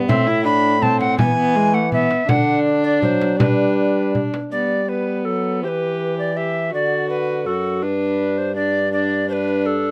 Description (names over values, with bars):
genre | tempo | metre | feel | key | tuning
classical, renaissance-style consort dance | 164 BPM | 3/4 | straight | unclear | A4 = 440 Hz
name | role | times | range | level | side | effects
warm viola | accompaniment | 0.0-9.9 s | G#3 to G4 | -24 LUFS | equal | none
warm trombone | bass | 0.0-9.9 s | F#2 to G3 | -26 LUFS | equal | none
mellow tenor recorder | melody | 0.1-9.9 s | A4 to B5 | -23 LUFS | equal | none
frame drum | percussion | 0.1-4.5 s | none | -24 LUFS | equal | none
room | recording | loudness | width
light reverb | close, detailed microphones | -19 LUFS | mono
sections
0.0-4.5 A section; 4.5-9.9 B section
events
none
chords
0.1 Am; 1.2 E; 2.3 D; 3.4 G; 5.6 Em; 6.7 D; 7.8 G